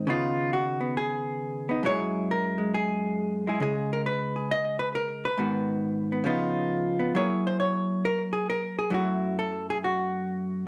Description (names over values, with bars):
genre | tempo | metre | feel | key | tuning
solo jazz | 136 BPM | 4/4 | swing 66% on 8ths | unclear | A4 = 444 Hz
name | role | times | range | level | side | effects
vintage hollow-body jazz guitar | solo | 0.0-10.7 s | Gb2 to Eb5 | -28 LUFS | equal | slapback echo
room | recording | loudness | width
moderate small room reverb, RT60 0.5 s | dry, close 1970s-style studio recording | -28 LUFS | mono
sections
0.1-10.7 A section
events
none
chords
0.1 Db9; 1.8 Gb9; 3.6 Db5; 5.4 Abm7; 6.3 Db9; 7.1 Gb9; 8.9 Gbm7